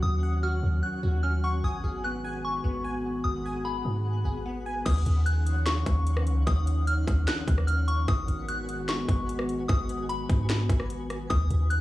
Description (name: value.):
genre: hip hop, atmospheric cloud-rap.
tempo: 149 BPM.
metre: 4/4.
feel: half-time.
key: Eb minor.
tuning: A4 = 441 Hz.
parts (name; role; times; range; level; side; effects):
soft synth bell; melody; 0.0-11.8 s; Cb6 to Gb6; -33 LUFS; left 2 dB; chorus, analog delay.
dark analog pad; sustained chords; 0.0-11.8 s; Eb3 to Gb4; -34 LUFS; equal; chorus, sidechain pumping.
glassy wavetable pluck; arpeggios; 0.0-4.9 s; Cb4 to Ab5; -38 LUFS; equal; chorus, analog delay.
warm 808-style bass; bass; 0.0-11.8 s; Ab1 to Ab2; -27 LUFS; equal; none.
twinkling granular texture; texture; 0.0-11.8 s; F3 to Ab5; -44 LUFS; equal; built-in reverb.
trap drum kit; drums; 4.9-11.8 s; crash cymbal, hi-hat, kick drum, rim click, snare drum; -28 LUFS; equal; overdrive.
room: little or no reverb.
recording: dry, gritty hardware recording, transformer saturation, cassette tape, small room reverb.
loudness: -25 LUFS.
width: side -16 dB against mid.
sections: 0.0-4.9 A section; 4.9-11.8 B section.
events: none.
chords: 0.0 Ebm9; 1.6 Abm7; 4.9 Ebm9; 8.1 Abm7; 11.3 Ebm9.